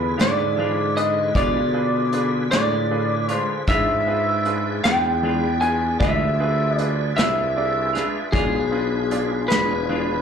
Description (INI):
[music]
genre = slow blues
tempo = 52 BPM (dotted quarters)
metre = 12/8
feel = straight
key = unclear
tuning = A4 = 440 Hz
[part]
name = electric guitar through a small old amp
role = melody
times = 0.0-10.2 s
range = G#4 to G#5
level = -22 LUFS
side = equal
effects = plate reverb, slapback echo
[part]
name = bright upright piano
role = accompaniment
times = 0.0-10.2 s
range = D4 to D5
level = -29 LUFS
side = right 4 dB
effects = plate reverb, slapback echo
[part]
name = tonewheel organ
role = sustained chords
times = 0.0-10.2 s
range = D3 to D5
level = -30 LUFS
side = left 2 dB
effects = slow rotary speaker, overdrive, chorus vibrato, plate reverb
[part]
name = warm tuba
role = bass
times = 0.0-10.2 s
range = E1 to B2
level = -24 LUFS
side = equal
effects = none
[part]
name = clean electric guitar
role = accompaniment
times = 0.2-10.1 s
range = E3 to F4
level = -29 LUFS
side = left 4 dB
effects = harmonic tremolo, plate reverb, slapback echo
[part]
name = vintage brush drum kit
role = drums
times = 0.2-9.7 s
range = hi-hat, kick drum, snare drum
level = -24 LUFS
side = equal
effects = none
[sound]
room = light reverb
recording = live gig heard through the venue's PA, club reverb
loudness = -18 LUFS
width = side -7 dB against mid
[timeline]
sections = 0.0-10.2 A section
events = none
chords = 0.0 E7b9